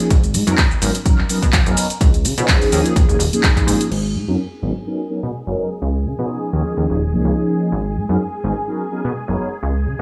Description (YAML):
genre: filtered disco house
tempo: 126 BPM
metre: 4/4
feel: swing 55% on 16ths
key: G# dorian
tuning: A4 = 440 Hz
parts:
  - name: mellow synth brass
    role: accompaniment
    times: 0.0-10.0 s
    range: E#3 to A#4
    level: -24 LUFS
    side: equal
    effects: chorus, phaser, sidechain pumping, low-pass filter
  - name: punchy analog drum machine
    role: drums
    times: 0.0-4.0 s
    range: crash cymbal, handclaps, hi-hat, shaker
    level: -24 LUFS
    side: equal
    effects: sidechain pumping on hats, sidechain pumping on perc, sidechain pumping on cymbals
  - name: plucky analog bass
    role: bass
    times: 0.1-10.0 s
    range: D#1 to C#3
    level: -22 LUFS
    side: equal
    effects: sidechain pumping, low-pass filter
  - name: electronic kick drum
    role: drums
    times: 0.1-3.7 s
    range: none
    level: -18 LUFS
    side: equal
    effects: none
  - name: string machine, full ensemble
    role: sustained chords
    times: 3.9-10.0 s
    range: G#4 to G#5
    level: -32 LUFS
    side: equal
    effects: ensemble chorus, sidechain pumping, low-pass filter
room: little or no reverb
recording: studio reverb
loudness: -18 LUFS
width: mono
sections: 0.0-3.9 A section; 3.9-10.0 B section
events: filter sweep 3.9-10.0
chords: 0.1 G#m11; 1.1 Bmaj9; 2.0 C#7; 2.7 D#9sus4; 3.9 G#m11; 4.9 Bmaj9; 5.8 C#7; 6.5 D#9sus4; 7.7 G#m11; 8.7 Bmaj9